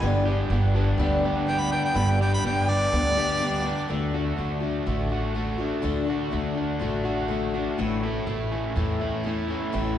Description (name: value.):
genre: rock.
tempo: 123 BPM.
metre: 4/4.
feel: straight.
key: unclear.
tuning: A4 = 439 Hz.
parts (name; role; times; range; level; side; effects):
picked steel-string acoustic guitar; accompaniment; 0.0-10.0 s; G2 to G4; -28 LUFS; left 3 dB; none.
crunchy overdriven guitar; riff; 0.0-10.0 s; G2 to G4; -30 LUFS; right 2 dB; none.
upright bass; bass; 0.0-10.0 s; G1 to E2; -27 LUFS; equal; none.
warm harmonica; melody; 1.5-3.9 s; D5 to B5; -29 LUFS; right 1 dB; none.
room: wet church reverb, RT60 2.6 s.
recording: recorded in a church or concert hall, nothing above 10.5 kHz.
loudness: -23 LUFS.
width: side -10 dB against mid.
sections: 0.0-3.9 A section; 3.9-10.0 B section.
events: harmonica solo 0.0-3.9.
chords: 0.0 G; 3.9 D; 7.8 A.